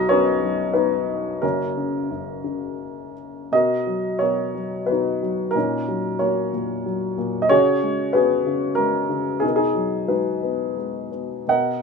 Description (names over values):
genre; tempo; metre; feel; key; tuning
classical, lyrical solo piano; 81-95 BPM; 3/4; rubato; F# major; A4 = 445 Hz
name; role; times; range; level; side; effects
dark upright piano; solo; 0.0-11.8 s; F#1 to F#5; -20 LUFS; left 1 dB; none
room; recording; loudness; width
moderate studio reverb, RT60 0.6 s; minimal, uncompressed stereo recording; -20 LUFS; side -5 dB against mid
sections
0.0-3.5 A section; 3.5-11.8 B section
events
none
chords
0.0 Bmaj7; 1.4 F#; 3.5 Bmaj7; 5.6 F#6/A#; 7.5 C#7sus4; 9.4 G#m7/B